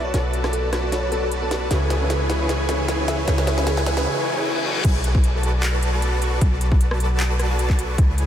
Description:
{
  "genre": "future bass",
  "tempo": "153 BPM",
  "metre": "4/4",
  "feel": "swing 54% on 16ths, half-time",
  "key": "unclear",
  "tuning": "A4 = 441 Hz",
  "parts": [
    { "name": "bell-like FM electric piano", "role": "melody", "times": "0.0-3.8 s", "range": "G#4 to E5", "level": "-30 LUFS", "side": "equal", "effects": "chorus, sidechain pumping, ping-pong delay" },
    { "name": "dense compressed supersaw", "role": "riff", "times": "0.0-8.3 s", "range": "E4 to C#6", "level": "-25 LUFS", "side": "equal", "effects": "sidechain pumping, low-pass filter, ping-pong delay" },
    { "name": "warm 808-style bass", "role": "bass", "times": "0.0-8.3 s", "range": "B1 to C#2", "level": "-22 LUFS", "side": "equal", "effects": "tube saturation, sidechain pumping" },
    { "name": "riser and reverse cymbal", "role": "sound effects", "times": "2.0-4.8 s", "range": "none", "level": "-33 LUFS", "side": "left 3 dB", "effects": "none" },
    { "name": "felt-muted upright piano", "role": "accompaniment", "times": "0.1-4.1 s", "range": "C#3 to D5", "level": "-30 LUFS", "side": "right 2 dB", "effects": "wide subtle chorus, sidechain pumping, ping-pong delay" },
    { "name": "trap drum kit", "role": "drums", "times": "0.1-8.3 s", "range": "crash cymbal, handclaps, hi-hat, rim click, snare drum", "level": "-27 LUFS", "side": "equal", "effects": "none" },
    { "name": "electronic kick drum", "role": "drums", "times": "4.8-8.1 s", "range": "none", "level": "-17 LUFS", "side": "equal", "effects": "none" }
  ],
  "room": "wet huge ambient reverb, RT60 6.2 s",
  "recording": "dreamy mix soaked in reverb",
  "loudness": "-18 LUFS",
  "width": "side -10 dB against mid",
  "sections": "0.0-4.8 A section; 4.8-8.3 B section",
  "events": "build-up 0.0-4.8; drum fill 0.0-4.1; reverse cymbal 4.1-4.8; drop 4.8-8.3",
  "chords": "0.0 Bm7; 1.7 C#m7; 4.7 Bm7"
}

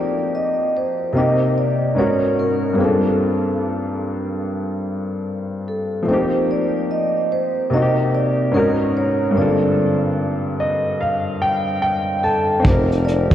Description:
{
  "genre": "lo-fi hip hop",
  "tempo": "73 BPM",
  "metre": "4/4",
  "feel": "swing 60% on 16ths",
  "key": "unclear",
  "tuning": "A4 = 436 Hz",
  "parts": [
    { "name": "vibraphone with soft mallets", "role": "melody", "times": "0.0-13.3 s", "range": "Ab4 to Eb5", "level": "-22 LUFS", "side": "right 1 dB", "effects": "none" },
    { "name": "warm upright piano", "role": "accompaniment", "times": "0.0-13.3 s", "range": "G2 to A5", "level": "-18 LUFS", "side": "left 1 dB", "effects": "cassette tape" },
    { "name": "warm tuba", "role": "bass", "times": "12.6-13.3 s", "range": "F1", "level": "-21 LUFS", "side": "equal", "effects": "none" },
    { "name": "vintage brush drum kit", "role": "drums", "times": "12.6-13.3 s", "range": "hi-hat, kick drum", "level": "-15 LUFS", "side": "equal", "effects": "none" }
  ],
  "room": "wet lush hall reverb, RT60 2.9 s",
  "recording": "dreamy mix soaked in reverb, cassette tape",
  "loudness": "-17 LUFS",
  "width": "side -11 dB against mid",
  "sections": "0.0-12.6 A section",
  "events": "upright piano fill 10.2-12.6",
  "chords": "0.0 F9sus4; 1.1 Cm9; 2.0 Abm11; 2.8 Gm11; 6.1 F9sus4; 7.7 Cm9; 8.5 Abm11; 9.4 Gm11; 12.6 F9sus4"
}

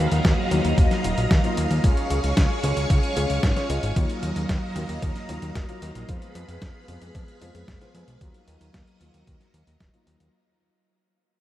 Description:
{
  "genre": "italo disco",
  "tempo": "113 BPM",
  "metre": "4/4",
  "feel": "straight",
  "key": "Eb minor",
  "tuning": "A4 = 443 Hz",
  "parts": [
    { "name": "string machine, full ensemble", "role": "sustained chords", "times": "0.0-10.3 s", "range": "Gb3 to Db6", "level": "-29 LUFS", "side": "equal", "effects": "ensemble chorus, vintage 12-bit sampler grit" },
    { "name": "dark concert grand piano", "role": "stabs", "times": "0.0-10.3 s", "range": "F3 to Eb5", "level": "-31 LUFS", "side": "left 2 dB", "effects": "wide subtle chorus, low-pass filter, tape echo" },
    { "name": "fat analog bass", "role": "bass", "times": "0.0-10.3 s", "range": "Eb1 to F2", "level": "-26 LUFS", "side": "equal", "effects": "none" },
    { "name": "dusty soul sampler-style drum kit", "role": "drums", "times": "0.1-10.3 s", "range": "hi-hat, snare drum", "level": "-29 LUFS", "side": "equal", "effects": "none" },
    { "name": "electronic kick drum", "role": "drums", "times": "0.2-9.9 s", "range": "none", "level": "-22 LUFS", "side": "equal", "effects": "none" }
  ],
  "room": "light reverb",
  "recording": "vinyl crackle",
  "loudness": "-21 LUFS",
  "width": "side -14 dB against mid",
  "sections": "0.0-10.3 A section",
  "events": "fade-out 0.0-10.3",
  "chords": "0.0 Ebmadd9; 1.8 Db; 4.0 Ebmadd9; 6.1 Fdim; 8.2 Ebmadd9"
}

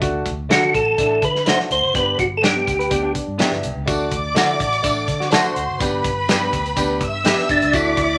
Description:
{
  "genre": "uptempo 1960s-style soul",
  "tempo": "124 BPM",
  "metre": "4/4",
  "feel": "straight",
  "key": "unclear",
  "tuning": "A4 = 440 Hz",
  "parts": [
    { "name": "bright upright piano", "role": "accompaniment", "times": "0.0-8.0 s", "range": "A3 to A4", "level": "-28 LUFS", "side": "equal", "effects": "none" },
    { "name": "vintage muted fingered electric bass", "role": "bass", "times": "0.0-8.2 s", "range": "F#1 to D3", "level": "-31 LUFS", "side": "equal", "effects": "none" },
    { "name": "warm soul drum kit", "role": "drums", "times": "0.0-8.1 s", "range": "hi-hat, kick drum, snare drum", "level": "-25 LUFS", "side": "equal", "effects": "none" },
    { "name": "percussive tonewheel organ", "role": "melody", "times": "0.5-3.1, 7.5-8.2 s", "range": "D4 to C5", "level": "-20 LUFS", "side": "equal", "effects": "overdrive, chorus vibrato, fast rotary speaker" },
    { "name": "electric guitar through a small old amp", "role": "stabs", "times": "0.5-7.4 s", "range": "A3 to B4", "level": "-27 LUFS", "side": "equal", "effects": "spring reverb" },
    { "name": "hollow-body jazz guitar", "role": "riff", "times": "2.8-5.8 s", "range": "D4 to B4", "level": "-28 LUFS", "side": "equal", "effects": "none" },
    { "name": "warm studio violin section", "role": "second line", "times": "3.9-8.2 s", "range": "B4 to E6", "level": "-24 LUFS", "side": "equal", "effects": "none" },
    { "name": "tambourine", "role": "percussion", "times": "3.9-7.8 s", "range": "none", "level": "-35 LUFS", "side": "equal", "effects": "none" }
  ],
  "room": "wet studio ambience, RT60 0.5 s",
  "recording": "none",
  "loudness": "-19 LUFS",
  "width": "mono",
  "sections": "0.0-8.2 A section",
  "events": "none",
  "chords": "0.0 D; 2.0 G; 3.9 D; 5.8 G"
}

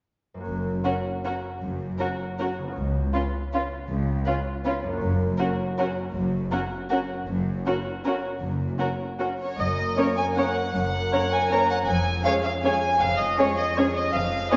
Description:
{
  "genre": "classical, orchestral ballroom waltz",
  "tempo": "158 BPM",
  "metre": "3/4",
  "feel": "uneven beats, rubato",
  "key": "F# major",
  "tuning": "A4 = 436 Hz",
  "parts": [
    { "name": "concert harp", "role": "arpeggios", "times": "0.3-14.6 s", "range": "E#2 to F#5", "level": "-34 LUFS", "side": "equal", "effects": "none" },
    { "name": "rich symphonic double bass section", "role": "bass", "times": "0.5-14.4 s", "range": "E#1 to C#2", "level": "-34 LUFS", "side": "equal", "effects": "none" },
    { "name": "warm studio cello section", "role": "bass", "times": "0.5-14.4 s", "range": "C#2 to F#2", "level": "-34 LUFS", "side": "equal", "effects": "none" },
    { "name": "warm symphonic violin section", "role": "melody", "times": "0.8-14.6 s", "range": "A#4 to A#5", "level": "-30 LUFS", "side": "equal", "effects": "none" },
    { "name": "dark studio violin section", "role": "second line", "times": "0.8-14.6 s", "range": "E#4 to C#5", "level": "-32 LUFS", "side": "equal", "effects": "none" },
    { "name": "dark symphonic viola section", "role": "accompaniment", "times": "0.8-14.6 s", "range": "B3 to C#4", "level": "-32 LUFS", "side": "equal", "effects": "none" },
    { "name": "dark French horn section", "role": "sustained chords", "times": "10.0-14.6 s", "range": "G#3 to C#4", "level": "-36 LUFS", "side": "equal", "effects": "none" }
  ],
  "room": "wet scoring stage reverb, RT60 2.0 s",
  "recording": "heard from further back in the room, nothing above 7.5 kHz",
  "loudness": "-25 LUFS",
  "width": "mono",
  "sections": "0.5-9.6 A section; 9.6-14.6 B section",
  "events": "none",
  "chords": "0.5 F#; 2.8 C#7; 5.0 F#; 11.9 C#/E#"
}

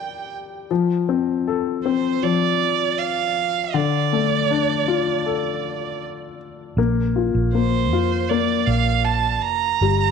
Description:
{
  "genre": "pop",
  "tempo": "79 BPM",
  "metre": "4/4",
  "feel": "straight",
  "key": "Bb major",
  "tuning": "A4 = 440 Hz",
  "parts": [
    { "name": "warm violin", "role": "melody", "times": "0.0-10.1 s", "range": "C5 to Bb5", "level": "-22 LUFS", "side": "right 12 dB", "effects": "slapback echo" },
    { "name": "warm baby grand piano", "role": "accompaniment", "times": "0.0-10.1 s", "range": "D3 to D5", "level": "-22 LUFS", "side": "left 9 dB", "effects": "none" },
    { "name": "vintage muted fingered electric bass", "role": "bass", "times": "6.8-10.1 s", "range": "F1 to F2", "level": "-22 LUFS", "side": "right 2 dB", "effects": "none" }
  ],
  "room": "light reverb, small room ambience",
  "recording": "1960s-style stereo with parts hard left and right",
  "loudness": "-18 LUFS",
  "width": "side -6 dB against mid",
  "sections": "0.0-10.1 A section",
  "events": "none",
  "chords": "0.0 Gm; 0.7 F6; 3.7 Dm; 6.8 Bbsus2"
}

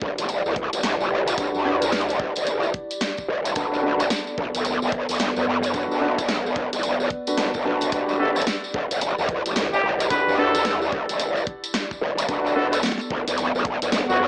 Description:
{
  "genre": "glitch hop",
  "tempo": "110 BPM",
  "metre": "4/4",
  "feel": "swing 62% on 16ths",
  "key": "E minor",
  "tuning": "A4 = 441 Hz",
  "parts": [
    { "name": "warbly tape-like pad", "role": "sustained chords", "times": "0.0-14.3 s", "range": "B3 to D5", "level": "-31 LUFS", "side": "equal", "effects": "chorus, built-in reverb, sidechain pumping" },
    { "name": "growl bass", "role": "bass", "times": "0.0-14.3 s", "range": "E1 to F#2", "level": "-23 LUFS", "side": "equal", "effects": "chorus" },
    { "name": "electronic kick drum", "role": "drums", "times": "0.0-13.8 s", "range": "none", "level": "-33 LUFS", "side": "equal", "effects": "none" },
    { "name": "dubstep drum kit", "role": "drums", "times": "0.2-14.3 s", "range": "hi-hat, rim click, snare drum", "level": "-28 LUFS", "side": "equal", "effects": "analog delay" },
    { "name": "tambourine", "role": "percussion", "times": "0.2-14.2 s", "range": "none", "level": "-33 LUFS", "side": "equal", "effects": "none" },
    { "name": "dark grand piano", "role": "stabs", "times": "1.4-12.7 s", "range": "D4 to B4", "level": "-27 LUFS", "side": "equal", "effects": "vintage 12-bit sampler grit, sidechain pumping, low-pass filter, analog delay" },
    { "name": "breathy trumpet", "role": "melody", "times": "8.2-14.2 s", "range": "F#4 to B4", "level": "-26 LUFS", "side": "equal", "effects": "analog delay" }
  ],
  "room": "moderate spring reverb, RT60 1.3 s",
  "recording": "echo-heavy mix, small speaker sound",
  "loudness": "-20 LUFS",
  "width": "side -40 dB against mid",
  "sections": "0.0-14.3 A section",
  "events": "filter sweep on grand piano 0.0-14.3",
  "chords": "0.0 Em7; 3.6 Bm7; 7.9 Em7; 12.3 Bm7"
}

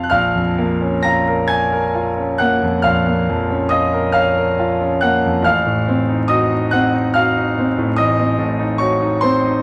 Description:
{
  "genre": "classical, romantic nocturne for solo piano",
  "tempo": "41-50 BPM (dotted quarters)",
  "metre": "12/8",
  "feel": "rubato",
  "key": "Bb minor",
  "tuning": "A4 = 439 Hz",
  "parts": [
    { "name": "bright concert grand piano", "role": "solo", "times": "0.0-9.6 s", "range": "A1 to Bb6", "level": "-17 LUFS", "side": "equal", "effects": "none" }
  ],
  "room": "light reverb",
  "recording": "dark, warm production, vinyl crackle",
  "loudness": "-17 LUFS",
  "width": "mono",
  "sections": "0.1-9.6 A section",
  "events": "none",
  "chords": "0.1 Bbm; 5.4 Adim7"
}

